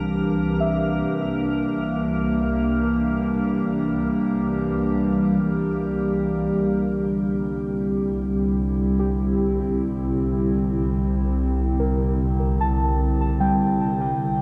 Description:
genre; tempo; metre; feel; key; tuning
ambient; free time; none; none; unclear; A4 = 440 Hz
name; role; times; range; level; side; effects
warbly tape-like pad; sustained chords; 0.0-14.4 s; D3 to G4; -24 LUFS; equal; chorus, built-in reverb
warm studio double bass section; bass; 0.0-14.4 s; C2; -30 LUFS; equal; none
organ-like drone; drone; 0.0-6.7 s; Bb3 to Bb4; -36 LUFS; equal; ensemble chorus, built-in reverb
muted felt-like synth keys; arpeggios; 0.6-14.4 s; G3 to A5; -31 LUFS; equal; chorus, tape echo
room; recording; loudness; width
wet concert hall reverb, RT60 1.8 s; dark, warm production; -23 LUFS; mono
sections
0.0-6.6 A section; 6.6-14.4 B section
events
none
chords
0.0 Cadd9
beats
free time

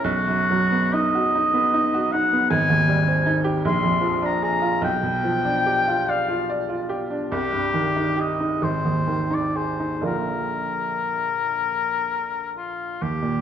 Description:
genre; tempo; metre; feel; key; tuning
classical, romantic duo for oboe and grand piano; 39-53 BPM (dotted quarters); 6/8; rubato; unclear; A4 = 440 Hz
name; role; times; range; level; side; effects
warm oboe; melody; 0.0-13.4 s; F4 to C6; -22 LUFS; left 3 dB; none
bright baby grand piano; accompaniment; 0.0-13.4 s; Ab1 to D5; -23 LUFS; right 2 dB; none
room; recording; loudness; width
wet scoring stage reverb, RT60 1.6 s; dark, warm production; -20 LUFS; side -9 dB against mid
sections
0.0-13.0 A section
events
none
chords
0.0 B; 2.5 Abmaj7; 3.6 Bb7; 4.8 G7/B; 7.3 Cm; 8.6 Ab; 10.1 Bb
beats
| 0.04 1.34 | 2.51 3.65 | 4.84 6.08 | 7.31 8.62 | 10.06 11.57 | 13.01

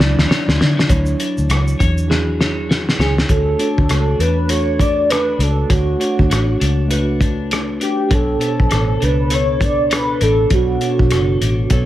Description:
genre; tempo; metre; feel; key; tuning
indie pop, bedroom pop; 100 BPM; 4/4; swing 60% on 16ths; D lydian, D major from 3.3 s; A4 = 437 Hz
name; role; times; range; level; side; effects
warm velvety synth lead; melody; 0.0-11.7 s; F#4 to D5; -20 LUFS; right 1 dB; lush chorus, digital delay
clean electric guitar; accompaniment; 0.0-11.9 s; B2 to C#5; -24 LUFS; left 4 dB; wide subtle chorus, vibrato effect
mellow tine electric piano; accompaniment; 0.0-11.9 s; F#3 to D5; -24 LUFS; right 2 dB; slow stereo tremolo, cassette tape
hollow soft pad; sustained chords; 0.0-0.9 s; E3 to E4; -33 LUFS; right 5 dB; none
vintage muted fingered electric bass; bass; 0.0-11.9 s; F#1 to D3; -18 LUFS; equal; none
cloth-damped thuddy drum kit; drums; 0.0-11.9 s; hi-hat, kick drum, rim click, shaker, snare drum; -18 LUFS; equal; none
room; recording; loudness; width
light reverb, small room ambience; none; -14 LUFS; side -13 dB against mid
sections
0.9-3.3 A section; 3.3-11.9 B section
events
drum fill 0.0-0.9, 2.1-3.3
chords
0.0 Dmaj9; 3.3 Dmaj7; 8.1 Bm9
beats
0.29 | 0.89 1.49 2.09 2.70 | 3.30 3.90 4.50 5.10 | 5.70 6.30 6.91 7.51 | 8.11 8.71 9.31 9.91 | 10.51 11.11 11.71

